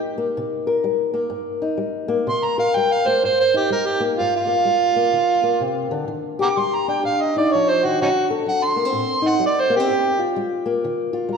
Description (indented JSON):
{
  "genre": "acoustic country blues, solo or duo",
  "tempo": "126 BPM",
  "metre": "4/4",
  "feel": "swing 62% on 8ths",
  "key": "G minor",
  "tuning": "A4 = 444 Hz",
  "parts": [
    { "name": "fingerpicked old ladder-braced acoustic guitar", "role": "accompaniment", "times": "0.0-11.4 s", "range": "G2 to Bb4", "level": "-22 LUFS", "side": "left 3 dB", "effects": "none" },
    { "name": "overdriven harmonica", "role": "melody", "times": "2.3-10.2 s", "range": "C#4 to D6", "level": "-19 LUFS", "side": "right 3 dB", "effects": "none" }
  ],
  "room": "wet concert hall reverb, RT60 2.3 s",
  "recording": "recorded in a church or concert hall",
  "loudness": "-18 LUFS",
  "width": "side -6 dB against mid",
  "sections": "0.0-11.4 A section",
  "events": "harmonica solo 0.0-11.4",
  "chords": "0.0 Cm7; 4.2 Gm7; 6.1 Ebmaj7; 8.0 D7b9; 9.9 Gm7"
}